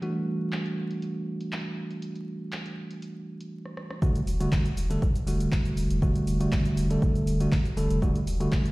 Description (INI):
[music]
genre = deep house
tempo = 120 BPM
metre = 4/4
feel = swing 53% on 16ths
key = E minor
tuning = A4 = 440 Hz
[part]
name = bell-like tine electric piano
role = stabs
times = 0.0-8.7 s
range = D3 to A4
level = -28 LUFS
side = right 1 dB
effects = vintage 12-bit sampler grit, tape echo
[part]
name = punchy analog drum machine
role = drums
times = 0.0-8.7 s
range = handclaps, hi-hat, rim click, shaker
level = -40 LUFS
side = equal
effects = low-pass filter on hats, low-pass filter on snare, low-pass filter on perc
[part]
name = electronic kick drum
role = drums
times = 4.0-8.6 s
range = none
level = -25 LUFS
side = equal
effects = none
[part]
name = warm sub bass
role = bass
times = 4.3-8.5 s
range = E1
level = -29 LUFS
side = equal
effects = sidechain pumping
[sound]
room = light reverb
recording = played on a big sound system in a bare room, large studio reverb, vinyl crackle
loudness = -25 LUFS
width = side -21 dB against mid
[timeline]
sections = 0.0-4.0 A section; 4.0-8.7 B section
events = drum fill 3.6-4.0; drop 4.0-8.7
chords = 0.0 Em11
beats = | 0.02 0.52 1.02 1.52 | 2.02 2.52 3.02 3.52 | 4.02 4.52 5.02 5.52 | 6.02 6.52 7.02 7.52 | 8.02 8.52